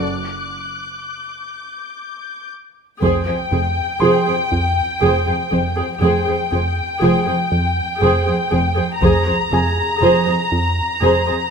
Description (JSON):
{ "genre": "cinematic, suspense film score", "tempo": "60 BPM", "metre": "3/4", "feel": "straight", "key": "F minor from 3.0 s", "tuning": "A4 = 440 Hz", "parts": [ { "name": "bright grand piano", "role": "texture", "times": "0.0-11.5 s", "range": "Ab4 to C6", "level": "-28 LUFS", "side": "right 1 dB", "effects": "none" }, { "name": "muted symphonic violin section", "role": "texture", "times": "0.0-2.5 s", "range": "D6 to F#6", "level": "-28 LUFS", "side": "left 4 dB", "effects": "none" }, { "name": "muted symphonic violin section", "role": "melody", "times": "3.0-11.5 s", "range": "G5 to Bb5", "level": "-21 LUFS", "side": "left 4 dB", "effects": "none" }, { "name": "muted symphonic violin section", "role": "second line", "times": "3.0-11.3 s", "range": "C5", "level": "-22 LUFS", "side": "equal", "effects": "none" }, { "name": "muted studio viola section", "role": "accompaniment", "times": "3.0-11.4 s", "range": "Ab4", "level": "-21 LUFS", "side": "right 2 dB", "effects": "none" }, { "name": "plucky analog bass", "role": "riff", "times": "3.0-11.3 s", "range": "F2 to F3", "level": "-20 LUFS", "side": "right 2 dB", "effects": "none" }, { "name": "muted studio double bass section", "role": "bass", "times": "3.0-11.1 s", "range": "F1", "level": "-27 LUFS", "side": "right 3 dB", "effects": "none" }, { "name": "muted symphonic cello section", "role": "bass", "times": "3.0-11.3 s", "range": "F2", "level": "-25 LUFS", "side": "right 2 dB", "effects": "none" }, { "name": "taiko ensemble", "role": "drums", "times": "3.0-11.0 s", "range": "none", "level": "-26 LUFS", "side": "left 1 dB", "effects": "none" } ], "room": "moderate scoring stage reverb, RT60 1.6 s", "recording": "close, detailed microphones", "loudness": "-15 LUFS", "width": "side -6 dB against mid", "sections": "0.0-3.0 A section; 3.0-11.5 B section", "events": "break 0.0-3.0", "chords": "0.0 D; 3.0 Fmadd9", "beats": "| 0.02 1.02 2.02 | 3.02 4.02 5.02 | 6.02 7.02 8.02 | 9.02 10.02 11.02" }